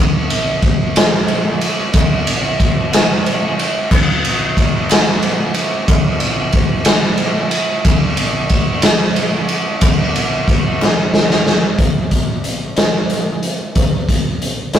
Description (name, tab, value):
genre	rock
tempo	61 BPM (dotted quarters)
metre	6/8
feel	straight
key	none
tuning	none
part	raw garage drum kit	drums	0.3-14.8 s	crash cymbal, hi-hat, kick drum, ride cymbal, snare drum	-13 LUFS	equal	none
part	group handclap	percussion	0.7-11.7 s	none	-29 LUFS	left 3 dB	none
room	little or no reverb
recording	rough rehearsal-room recording, tube saturation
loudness	-13 LUFS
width	side -10 dB against mid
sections	0.0-11.8 A section; 11.8-14.8 B section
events	drum fill 10.8-11.8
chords	none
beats	0.96 | 1.95 2.93 | 3.92 4.91 | 5.89 6.87 | 7.86 8.84 | 9.83 10.81 | 11.79 12.78 | 13.76 14.75